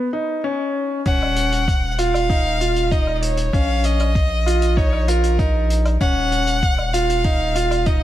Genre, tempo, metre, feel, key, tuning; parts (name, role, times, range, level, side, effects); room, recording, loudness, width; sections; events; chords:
piano and strings electronica; 97 BPM; 4/4; straight; Eb minor; A4 = 443 Hz
warm concert grand piano; riff; 0.0-8.0 s; Db4 to F4; -22 LUFS; equal; digital delay
dark violin; melody; 1.1-8.0 s; Bb4 to Gb5; -23 LUFS; left 1 dB
round analog bass; bass; 1.1-8.0 s; Eb1 to Bb1; -21 LUFS; equal; sidechain pumping, high-pass filter
electronic kick drum; drums; 1.1-8.0 s; -18 LUFS; equal
hi-hat and woodblock; drums; 1.1-8.0 s; -30 LUFS; equal
small room reverb; -16 LUFS; side -13 dB against mid
0.0-1.1 A section; 1.1-8.0 B section
break 0.0-1.1; build-up 0.0-1.1; drop 1.1-8.0
0.0 Bbmadd11 (rootless); 1.1 Ebm7; 3.5 Bbm; 6.0 Ebm7